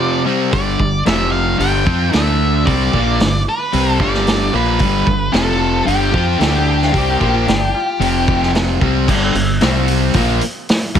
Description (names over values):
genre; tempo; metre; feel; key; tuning
classic rock; 112 BPM; 4/4; straight; unclear; A4 = 439 Hz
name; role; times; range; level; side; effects
octave-fuzz lead guitar; melody; 0.0-8.5 s; G4 to G5; -20 LUFS; left 1 dB; distortion, slapback echo
distorted electric guitar; riff; 0.0-11.0 s; F2 to F4; -20 LUFS; right 10 dB; overdrive
overdriven semi-hollow guitar; riff; 0.0-11.0 s; F2 to F4; -20 LUFS; left 11 dB; none
growling fingered electric bass; bass; 0.5-11.0 s; F1 to F2; -19 LUFS; right 1 dB; overdrive
vintage drum kit; drums; 0.5-11.0 s; crash cymbal, hi-hat, kick drum, snare drum; -19 LUFS; right 1 dB; none
clean lap steel guitar; second line; 6.7-8.0 s; D4 to G5; -26 LUFS; left 1 dB; none
room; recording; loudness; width
light reverb, small room ambience; none; -13 LUFS; side -9 dB against mid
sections
0.0-9.1 A section; 9.1-11.0 B section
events
none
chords
0.3 G5; 1.1 F5; 1.6 G5; 2.1 D5; 2.7 G; 5.3 F5; 5.9 G5; 6.4 D5; 6.9 G5; 8.0 F5; 8.8 C5; 9.1 G5; 9.6 C5; 10.2 N.C.